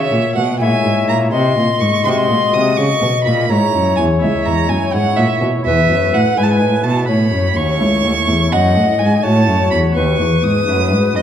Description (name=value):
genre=classical, baroque-style sonata movement with continuo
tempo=83 BPM (dotted quarters)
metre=12/8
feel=straight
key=E major from 5.7 s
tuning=A4 = 440 Hz
part: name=alto recorder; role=melody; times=0.0-11.2 s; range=B4 to E5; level=-19 LUFS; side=left 8 dB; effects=none
part: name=rich violin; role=second line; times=0.0-11.2 s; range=D#5 to D#6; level=-18 LUFS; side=right 5 dB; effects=none
part: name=pipe organ, flutes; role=accompaniment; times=0.0-11.2 s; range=C#2 to D#5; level=-19 LUFS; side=left 1 dB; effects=none
part: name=warm cello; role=bass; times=0.0-11.2 s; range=C#2 to C#3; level=-17 LUFS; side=right 1 dB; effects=none
room=wet recital hall reverb, RT60 1.6 s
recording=dark, warm production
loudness=-12 LUFS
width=side -9 dB against mid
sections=0.0-11.2 A section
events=none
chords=0.0 C#m; 1.3 G#7; 2.8 C#m; 5.7 E; 7.1 A; 8.5 F#m; 10.0 B7/D#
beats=0.60 1.32 2.05 | 2.77 3.49 4.22 4.93 | 5.65 6.37 7.09 7.80 | 8.52 9.24 9.96 10.68